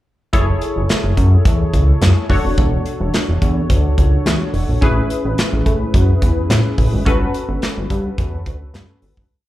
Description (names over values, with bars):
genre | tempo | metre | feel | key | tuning
early-eighties boogie funk | 107 BPM | 4/4 | straight | F# minor | A4 = 441 Hz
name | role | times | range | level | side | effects
funky polysynth comp | accompaniment | 0.3-9.3 s | C#4 to C#5 | -22 LUFS | left 1 dB | chorus, plate reverb, slapback echo
chorused synth bass | bass | 0.3-9.3 s | E1 to A2 | -16 LUFS | equal | none
modern studio drum kit | drums | 0.3-9.3 s | handclaps, hi-hat, kick drum, snare drum | -18 LUFS | equal | none
room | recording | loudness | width
little or no reverb | live gig heard through the venue's PA, club reverb | -14 LUFS | side -15 dB against mid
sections
0.3-9.3 verse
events
fade-out 7.1-9.3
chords
0.3 F#m9; 2.3 E13sus4; 4.8 Amaj9; 7.1 Gmaj9#11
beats
| 0.33 0.89 1.45 2.02 | 2.58 3.14 3.70 4.26 | 4.82 5.38 5.94 6.50 | 7.06 7.62 8.18 8.74